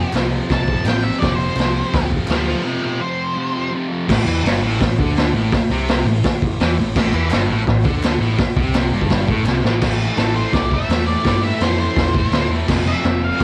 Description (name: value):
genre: garage rock duo or trio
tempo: 168 BPM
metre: 4/4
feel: straight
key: A minor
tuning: A4 = 440 Hz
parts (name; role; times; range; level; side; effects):
- octave-fuzz lead guitar; melody; 0.0-3.7, 10.2-13.4 s; A4 to A5; -26 LUFS; equal; distortion, cassette tape
- thick fuzz guitar; riff; 0.0-13.4 s; F2 to A3; -24 LUFS; equal; distortion
- overdriven picked electric bass; bass; 0.1-13.4 s; F1 to G2; -24 LUFS; equal; none
- raw garage drum kit; drums; 0.1-13.4 s; crash cymbal, hi-hat, kick drum, snare drum; -21 LUFS; equal; cassette tape
- group handclap; percussion; 0.1-2.4, 7.1-9.5 s; none; -38 LUFS; equal; none
room: light reverb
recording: home recording on cassette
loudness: -18 LUFS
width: mono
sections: 0.0-4.1 A section; 4.1-9.8 B section; 9.8-13.4 C section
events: break 2.7-4.1; drum fill 9.5-9.8; lead electric guitar solo 9.8-13.4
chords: 0.0 F5; 4.1 Am; 12.7 F